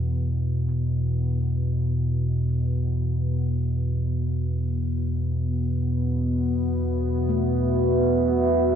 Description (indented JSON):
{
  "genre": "dark ambient drone",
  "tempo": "free time",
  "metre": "none",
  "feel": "none",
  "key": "unclear",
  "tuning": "A4 = 440 Hz",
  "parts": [
    { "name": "gamelan-type bossed gongs", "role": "arpeggios", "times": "0.0-8.8 s", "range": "E2 to A3", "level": "-38 LUFS", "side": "left 4 dB", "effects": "none" },
    { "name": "deep rumbling drone", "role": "drone", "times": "0.0-8.8 s", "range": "E2 to B2", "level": "-23 LUFS", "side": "equal", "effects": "built-in reverb, ensemble chorus" },
    { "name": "bronze singing bowl", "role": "texture", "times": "0.0-8.8 s", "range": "E4", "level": "-53 LUFS", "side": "left 2 dB", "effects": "none" },
    { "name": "deep dark ambient pad", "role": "sustained chords", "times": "4.9-8.8 s", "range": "B3 to E5", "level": "-24 LUFS", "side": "equal", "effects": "chorus, built-in reverb" }
  ],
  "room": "moderate plate reverb, RT60 2.8 s",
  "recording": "dreamy mix soaked in reverb",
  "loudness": "-22 LUFS",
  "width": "side -8 dB against mid",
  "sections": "0.0-8.8 A section",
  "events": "none",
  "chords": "0.0 Esus2",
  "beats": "free time"
}